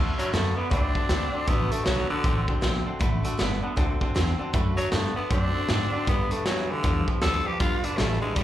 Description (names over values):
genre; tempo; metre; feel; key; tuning
rockabilly; 157 BPM; 4/4; swing 62% on 8ths; D major; A4 = 440 Hz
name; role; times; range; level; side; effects
picked steel-string acoustic guitar; accompaniment; 0.0-8.4 s; D3 to B4; -35 LUFS; left 5 dB; slapback echo
warm upright piano; accompaniment; 0.0-8.4 s; D5 to D6; -39 LUFS; left 4 dB; slapback echo
twangy electric guitar; riff; 0.0-8.4 s; G2 to C4; -32 LUFS; right 4 dB; slapback echo
upright bass; bass; 0.0-8.4 s; G1 to G#2; -28 LUFS; equal; none
raspy tenor saxophone; melody; 0.2-2.5, 4.8-8.4 s; D3 to A4; -28 LUFS; equal; slapback echo, tape echo
raw garage drum kit; drums; 0.2-8.4 s; hi-hat, kick drum, snare drum; -27 LUFS; equal; none
room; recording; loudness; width
light reverb; live gig heard through the venue's PA, club reverb; -23 LUFS; side -12 dB against mid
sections
0.0-8.4 A section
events
tenor saxophone solo 0.0-8.4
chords
0.0 D; 6.1 G